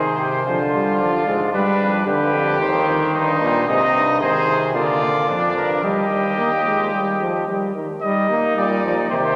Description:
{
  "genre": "classical, imitative canzona for brass ensemble",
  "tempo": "111 BPM",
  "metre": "4/4",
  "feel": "straight",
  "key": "Eb major from 3.7 s",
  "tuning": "A4 = 441 Hz",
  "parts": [
    { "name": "warm trumpet", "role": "melody", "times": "0.0-9.4 s", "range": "Bb4 to Eb5", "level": "-25 LUFS", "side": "equal", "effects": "none" },
    { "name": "bright trumpet", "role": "second line", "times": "0.0-9.4 s", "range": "D4 to Ab4", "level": "-26 LUFS", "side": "equal", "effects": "none" },
    { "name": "clear trombone", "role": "accompaniment", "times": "0.0-9.4 s", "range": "Bb2 to Bb3", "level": "-24 LUFS", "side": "equal", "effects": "none" },
    { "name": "warm euphonium", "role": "bass", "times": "0.0-9.4 s", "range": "Eb2 to D3", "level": "-26 LUFS", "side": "equal", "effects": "none" }
  ],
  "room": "wet church reverb, RT60 3.7 s",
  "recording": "none",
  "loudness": "-19 LUFS",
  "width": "mono",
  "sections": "0.0-8.0 A section; 8.0-9.4 B section",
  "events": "none",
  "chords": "0.5 Ddim; 1.5 G; 2.6 Cm/Eb; 3.7 Ab; 4.8 Bb; 5.8 Eb; 8.0 Eb/G"
}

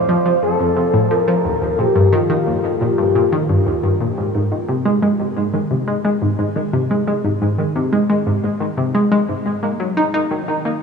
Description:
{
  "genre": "ambient",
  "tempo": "88 BPM",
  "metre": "4/4",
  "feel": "straight",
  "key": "unclear",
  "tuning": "A4 = 439 Hz",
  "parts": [
    { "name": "expressive portamento lead", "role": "melody", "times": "0.0-3.5 s", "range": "F4 to C5", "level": "-19 LUFS", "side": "left 1 dB", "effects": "wide subtle chorus, shimmer reverb, tape echo" },
    { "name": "analog pluck", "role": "riff", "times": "0.0-10.7 s", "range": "Eb2 to Eb4", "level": "-17 LUFS", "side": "equal", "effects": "chorus, shimmer reverb, tape echo" }
  ],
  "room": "wet huge ambient reverb, RT60 8.6 s",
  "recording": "studio ambience",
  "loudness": "-15 LUFS",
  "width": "side -5 dB against mid",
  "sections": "0.0-4.2 A section; 4.2-10.8 B section",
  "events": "none",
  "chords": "0.0 F; 1.4 Eb; 4.2 Ab5; 9.6 Ebm"
}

